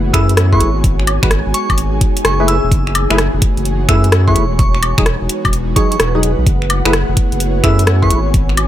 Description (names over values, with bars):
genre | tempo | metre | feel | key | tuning
UK garage, two-step garage | 128 BPM | 4/4 | swing 66% on 16ths | F# dorian | A4 = 440 Hz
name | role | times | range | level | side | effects
airy breathy pad | sustained chords | 0.0-8.7 s | E3 to G#4 | -25 LUFS | equal | chorus, sidechain pumping
saturated sub bass | bass | 0.0-8.7 s | E1 to F#2 | -15 LUFS | equal | tube saturation
ethereal airy pad | texture | 0.0-8.7 s | E3 to G#5 | -23 LUFS | right 1 dB | ensemble chorus, built-in reverb, sidechain pumping
glassy synth bell | melody | 0.1-8.2 s | C#6 to E6 | -22 LUFS | right 2 dB | chorus, ping-pong delay
percussive organ stab | stabs | 0.1-8.2 s | F#3 to B4 | -20 LUFS | left 1 dB | ensemble chorus, vintage 12-bit sampler grit, ping-pong delay
electronic kick drum | drums | 0.1-8.5 s | none | -15 LUFS | equal | none
garage drum kit | drums | 0.1-8.7 s | finger snaps, hi-hat, rim click, woodblock | -17 LUFS | left 1 dB | none
room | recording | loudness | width
little or no reverb | none | -11 LUFS | side -12 dB against mid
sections
0.0-8.7 A section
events
none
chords
0.0 F#m11; 0.8 G#m7; 2.5 F#m11; 4.6 Emaj9; 6.5 F#m11